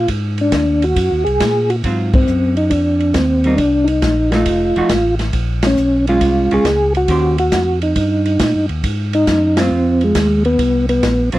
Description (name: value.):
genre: soul jazz organ trio.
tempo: 137 BPM.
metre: 4/4.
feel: swing 68% on 8ths.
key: Ab mixolydian.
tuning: A4 = 436 Hz.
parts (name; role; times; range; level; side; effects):
percussive tonewheel organ; melody; 0.0-11.4 s; Ab3 to Ab4; -15 LUFS; equal; slow rotary speaker, chorus vibrato.
tonewheel organ; bass; 0.0-11.4 s; F1 to Bb2; -19 LUFS; equal; overdrive, slow rotary speaker.
open jazz drum kit; drums; 0.1-11.4 s; hi-hat, kick drum, ride cymbal, snare drum; -21 LUFS; equal; none.
vintage hollow-body jazz guitar; accompaniment; 1.8-11.4 s; Eb3 to C5; -18 LUFS; right 2 dB; none.
room: light reverb.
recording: dry, close 1970s-style studio recording.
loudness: -13 LUFS.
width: side -16 dB against mid.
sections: 0.0-11.4 A section.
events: band accent 2.1, 5.6, 9.5.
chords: 0.1 Ab13; 3.6 Cm7; 4.5 F7b9; 5.3 Bbm7; 7.1 Eb13; 8.8 Ab13.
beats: | 0.08 0.52 0.96 1.40 | 1.83 2.27 2.71 3.15 | 3.58 4.02 4.46 4.90 | 5.33 5.77 6.21 6.65 | 7.08 7.52 7.96 8.40 | 8.84 9.27 9.71 10.15 | 10.59 11.02.